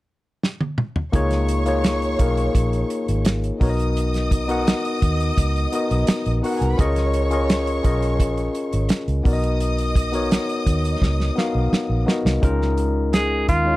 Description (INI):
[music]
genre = lush 1970s-style soul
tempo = 85 BPM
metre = 4/4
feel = straight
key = Db mixolydian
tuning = A4 = 439 Hz
[part]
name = warm soul drum kit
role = drums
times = 0.4-13.7 s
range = hi-hat, kick drum, snare drum, toms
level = -21 LUFS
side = right 1 dB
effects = none
[part]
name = warm studio string section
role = second line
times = 1.1-12.0 s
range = Gb4 to Eb6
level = -29 LUFS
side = right 1 dB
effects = none
[part]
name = barky tine electric piano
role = accompaniment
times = 1.1-13.8 s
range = Ab3 to Gb5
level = -23 LUFS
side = left 2 dB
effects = tube saturation
[part]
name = vintage muted fingered electric bass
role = bass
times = 1.1-13.8 s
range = Ab1 to Eb2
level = -22 LUFS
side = equal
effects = none
[part]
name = breathy tenor saxophone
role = melody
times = 13.1-13.8 s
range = F4 to Ab4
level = -20 LUFS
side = right 1 dB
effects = none
[sound]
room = little or no reverb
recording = none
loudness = -18 LUFS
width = side -18 dB against mid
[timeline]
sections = 0.0-1.1 A section; 1.1-12.4 B section; 12.4-13.8 C section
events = drum fill 0.4-1.1, 11.0-12.4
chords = 0.0 N.C.; 1.1 Db69; 3.6 Cbmaj7; 6.8 Db69; 9.3 Cbmaj7; 12.4 Db69